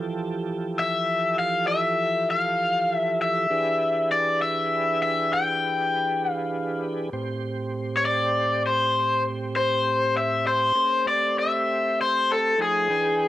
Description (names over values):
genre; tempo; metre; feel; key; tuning
blues; 66 BPM (dotted quarters); 12/8; straight; A minor; A4 = 441 Hz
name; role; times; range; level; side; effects
tonewheel organ; sustained chords; 0.0-13.3 s; A2 to G5; -29 LUFS; right 3 dB; slow rotary speaker, chorus vibrato, cassette tape
raw garage guitar; melody; 0.8-13.3 s; G#4 to G5; -22 LUFS; left 2 dB; overdrive, cassette tape
room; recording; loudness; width
light reverb, digital ambience; home recording on cassette; -21 LUFS; side -14 dB against mid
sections
0.0-13.3 A section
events
none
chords
0.0 Fmaj7; 3.5 E7#9; 7.1 Am7; 12.6 E7#9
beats
0.79 1.70 2.60 | 3.51 4.42 5.32 6.23 | 7.13 8.04 8.95 9.86 | 10.76 11.67 12.58